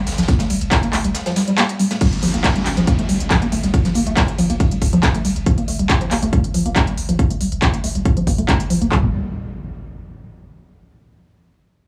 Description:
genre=driving peak-time techno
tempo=139 BPM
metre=4/4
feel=straight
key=G minor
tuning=A4 = 440 Hz
part: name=warm sub bass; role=bass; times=0.1-9.1 s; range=G1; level=-27 LUFS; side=equal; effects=overdrive, sidechain pumping, low-pass filter
part: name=crisp fusion drum kit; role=drums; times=0.1-5.4 s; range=ride cymbal, snare drum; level=-35 LUFS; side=equal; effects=high-pass filter on cymbals, high-pass filter on snare, high-pass filter on room
part: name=techno drum kit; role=drums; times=0.1-8.9 s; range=crash cymbal, handclaps, hi-hat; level=-24 LUFS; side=equal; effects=overdrive
part: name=woody wave-folded pluck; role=riff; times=0.2-9.1 s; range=F3 to Bb3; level=-23 LUFS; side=equal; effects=tube saturation, ensemble chorus, sidechain pumping, tape echo
part: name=techno drum kit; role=drums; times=0.3-9.0 s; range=handclaps, kick drum, toms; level=-20 LUFS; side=equal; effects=overdrive
part: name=downlifter and impact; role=sound effects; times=2.0-5.5, 8.9-10.6 s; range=none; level=-31 LUFS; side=equal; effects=none
room=light reverb, digital ambience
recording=dry, gritty hardware recording, small room ambience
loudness=-18 LUFS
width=mono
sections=0.0-2.0 A section; 2.0-8.9 B section; 8.9-10.6 C section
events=drop 0.0-2.0; filter sweep on synth arpeggio sound 2.0-8.9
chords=0.0 G7(no3); 8.9 N.C.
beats=| 0.28 0.72 1.15 1.58 | 2.01 2.44 2.88 3.31 | 3.74 4.17 4.60 5.03 | 5.46 5.90 6.33 6.76 | 7.19 7.62 8.05 8.49 | 8.92 9.35 9.78 10.21

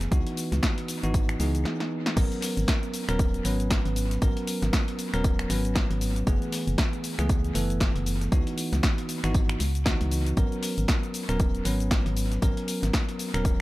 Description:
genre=deep house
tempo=117 BPM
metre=4/4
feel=swing 58% on 16ths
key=G# minor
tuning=A4 = 440 Hz
part: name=bell-like tine electric piano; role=stabs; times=0.0-13.6 s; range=E3 to B4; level=-30 LUFS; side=equal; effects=sidechain pumping, tape echo
part: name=organ-like FM bass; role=bass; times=0.0-13.6 s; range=D#1 to C#2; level=-28 LUFS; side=equal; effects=sidechain pumping
part: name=dusty soul sampler-style drum kit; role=drums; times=0.0-13.6 s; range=hi-hat, snare drum, tambourine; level=-41 LUFS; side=equal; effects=none
part: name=punchy analog drum machine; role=drums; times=0.0-13.6 s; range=crash cymbal, finger snaps, hi-hat, shaker, snare drum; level=-32 LUFS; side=left 1 dB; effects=overdrive, dub echo
part: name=electronic kick drum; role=drums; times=0.1-13.6 s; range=none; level=-25 LUFS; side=equal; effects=overdrive
room=little or no reverb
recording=echo-heavy mix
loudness=-24 LUFS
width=side -18 dB against mid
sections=0.0-2.2 A section; 2.2-13.6 B section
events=break 1.7-2.2; drum fill 1.7-2.2; drop 2.2-13.6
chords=0.1 C#m11; 2.2 G#m11; 6.3 F#m11; 8.3 C#m11; 10.4 G#m11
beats=| 0.12 0.63 1.14 1.66 | 2.17 2.68 3.19 3.71 | 4.22 4.73 5.24 5.76 | 6.27 6.78 7.30 7.81 | 8.32 8.83 9.35 9.86 | 10.37 10.88 11.40 11.91 | 12.42 12.94 13.45

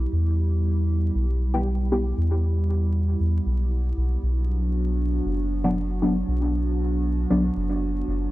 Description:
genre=dub techno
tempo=117 BPM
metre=4/4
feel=straight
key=E minor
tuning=A4 = 437 Hz
part: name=warbly tape-like pad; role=sustained chords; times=0.0-8.3 s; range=F#3 to G4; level=-29 LUFS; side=right 2 dB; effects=chorus, built-in reverb
part: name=soft dub sub bass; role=bass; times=0.0-8.3 s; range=F#1 to E2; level=-23 LUFS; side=equal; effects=none
part: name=deep mellow chord stab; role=stabs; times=1.5-2.1, 5.6-7.4 s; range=F#3 to G4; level=-26 LUFS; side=left 1 dB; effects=chorus, phaser, cassette tape, dub echo
room=little or no reverb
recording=dry, gritty hardware recording, vinyl crackle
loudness=-21 LUFS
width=side -17 dB against mid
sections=0.0-8.3 A section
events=filter sweep on synth stab 0.0-8.3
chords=0.0 Em; 4.2 Bm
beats=| 0.12 0.64 1.15 1.66 | 2.17 2.69 3.20 3.71 | 4.23 4.74 5.25 5.76 | 6.28 6.79 7.30 7.82

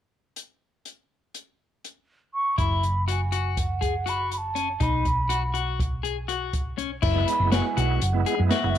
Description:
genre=progressive instrumental, band music in an uneven meter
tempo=243 BPM (eighths)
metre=9/8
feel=straight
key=unclear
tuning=A4 = 440 Hz
part: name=open jazz drum kit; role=drums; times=0.4-8.8 s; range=crash cymbal, hi-hat, kick drum, snare drum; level=-28 LUFS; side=equal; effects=none
part: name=mellow hollow wooden flute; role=melody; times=2.3-8.8 s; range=E5 to C#6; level=-27 LUFS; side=right 2 dB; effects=slapback echo
part: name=clean electric guitar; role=arpeggios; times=2.6-8.8 s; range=C#4 to G#4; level=-29 LUFS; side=left 10 dB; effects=wide subtle chorus
part: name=hollow-body short-scale fingered electric bass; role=bass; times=2.6-8.8 s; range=F#1 to F#2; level=-26 LUFS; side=equal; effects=none
part: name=bright tonewheel organ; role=accompaniment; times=7.1-8.8 s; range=G#3 to E4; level=-29 LUFS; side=right 14 dB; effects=chorus vibrato, fast rotary speaker
room=light reverb, small room ambience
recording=1960s-style stereo with parts hard left and right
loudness=-22 LUFS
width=side -10 dB against mid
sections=0.4-2.6 A section; 2.6-7.0 B section; 7.0-8.8 C section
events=none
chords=0.4 N.C.; 2.6 F#sus4; 4.8 B5; 7.0 F#7sus4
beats=| 0.36 0.61 0.86 1.10 1.35 1.60 1.84 2.09 2.34 | 2.58 2.83 3.08 3.33 3.57 3.82 4.07 4.31 4.56 | 4.81 5.05 5.30 5.55 5.79 6.04 6.29 6.54 6.78 | 7.03 7.28 7.52 7.77 8.02 8.26 8.51 8.76

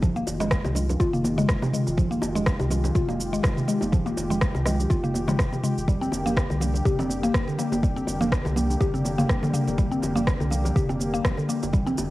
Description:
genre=afro house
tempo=123 BPM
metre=4/4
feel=swing 55% on 16ths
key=F dorian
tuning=A4 = 440 Hz
part: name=warm analog pad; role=sustained chords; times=0.0-12.1 s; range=D3 to G4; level=-31 LUFS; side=left 1 dB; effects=wide subtle chorus, sidechain pumping, cassette tape
part: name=mallet-like synth pluck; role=arpeggios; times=0.0-12.0 s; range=C3 to G4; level=-27 LUFS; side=equal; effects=chorus, phaser, sidechain pumping, cassette tape, analog delay
part: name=warm sub bass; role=bass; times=0.0-12.1 s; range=F1 to C2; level=-31 LUFS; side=equal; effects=sidechain pumping
part: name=afro-pop drum kit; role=drums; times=0.0-12.1 s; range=rim click, shaker, toms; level=-30 LUFS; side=equal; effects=studio reverb
part: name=electronic kick drum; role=drums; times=0.0-11.8 s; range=none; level=-24 LUFS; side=equal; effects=overdrive, studio reverb
part: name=bongos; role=percussion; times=0.0-12.1 s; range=none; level=-34 LUFS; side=left 1 dB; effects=none
part: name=congas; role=percussion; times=0.0-12.1 s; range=none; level=-33 LUFS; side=right 2 dB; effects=none
room=light reverb, digital ambience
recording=home recording on cassette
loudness=-22 LUFS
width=side -17 dB against mid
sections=0.0-12.1 A section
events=none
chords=0.0 Fm9; 5.9 Gm/F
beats=| 0.03 0.51 1.00 1.49 | 1.98 2.47 2.95 3.44 | 3.93 4.42 4.91 5.39 | 5.88 6.37 6.86 7.34 | 7.83 8.32 8.81 9.29 | 9.78 10.27 10.76 11.25 | 11.73

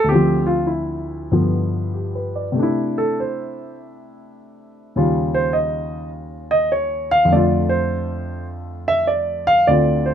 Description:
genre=solo jazz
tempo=101 BPM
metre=4/4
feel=swing 66% on 8ths, rubato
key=C major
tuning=A4 = 440 Hz
part: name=dark grand piano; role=solo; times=0.0-10.1 s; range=D2 to F5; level=-17 LUFS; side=equal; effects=none
room=light reverb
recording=close, detailed microphones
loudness=-17 LUFS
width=side -9 dB against mid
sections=0.0-2.6 A section; 2.6-10.1 B section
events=grand piano solo 2.6-10.1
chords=0.1 Dm7; 1.3 G7; 2.6 C69; 5.0 Eb9; 7.3 F6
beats=| 0.07 0.68 1.30 1.93 | 2.56 3.17 3.78 4.37 | 4.96 5.54 6.13 6.72 | 7.31 7.89 8.49 9.08 | 9.68

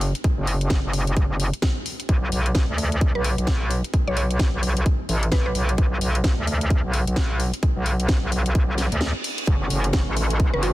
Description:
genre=bass house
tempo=130 BPM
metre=4/4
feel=swing 60% on 16ths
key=unclear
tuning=A4 = 440 Hz
part: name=metallic wobble bass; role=bass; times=0.0-10.7 s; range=F#1 to D2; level=-22 LUFS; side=equal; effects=chorus, overdrive, sidechain pumping
part: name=garage drum kit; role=drums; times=0.0-10.7 s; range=hi-hat, snare drum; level=-29 LUFS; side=left 1 dB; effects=studio reverb
part: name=electronic kick drum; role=drums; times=0.2-10.5 s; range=none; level=-23 LUFS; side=equal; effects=studio reverb
part: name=mallet-like synth pluck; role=melody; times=3.2-5.5, 10.5-10.7 s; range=F#4 to C#5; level=-30 LUFS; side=right 1 dB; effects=chorus, ping-pong delay
part: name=reverse cymbal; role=sound effects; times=8.7-9.5 s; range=none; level=-34 LUFS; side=right 3 dB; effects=none
part: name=muted studio string section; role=sustained chords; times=9.5-10.7 s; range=E3 to F#4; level=-30 LUFS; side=equal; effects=sidechain pumping
room=digital ambience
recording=dense, heavily limited modern master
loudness=-20 LUFS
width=side -17 dB against mid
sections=0.0-10.7 A section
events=reverse cymbal 8.7-9.5; break 9.0-9.5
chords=0.0 N.C.; 2.1 Bm; 9.5 F#m7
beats=| 0.24 0.70 1.17 1.63 | 2.09 2.55 3.01 3.47 | 3.94 4.40 4.86 5.32 | 5.78 6.24 6.71 7.17 | 7.63 8.09 8.55 9.01 | 9.47 9.94 10.40

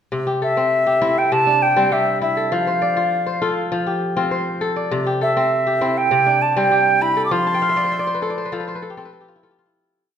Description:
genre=west african traditional, West African string and xylophone music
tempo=100 BPM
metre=4/4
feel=straight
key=C major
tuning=A4 = 440 Hz
part: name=kora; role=arpeggios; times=0.1-10.2 s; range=C3 to A5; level=-21 LUFS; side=left 2 dB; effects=none
part: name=concert flute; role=melody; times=0.4-8.5 s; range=E5 to D6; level=-17 LUFS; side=right 2 dB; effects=none
room=wet recital hall reverb, RT60 1.5 s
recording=minimal, uncompressed stereo recording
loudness=-16 LUFS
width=side -8 dB against mid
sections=0.1-9.7 A section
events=fade-out 7.3-9.7; kora fill 7.5-9.7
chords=0.1 C; 2.5 F; 4.9 C; 7.3 F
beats=| 0.12 0.72 1.32 1.92 | 2.52 3.12 3.72 4.32 | 4.91 5.51 6.11 6.71 | 7.32 7.92 8.52 9.12

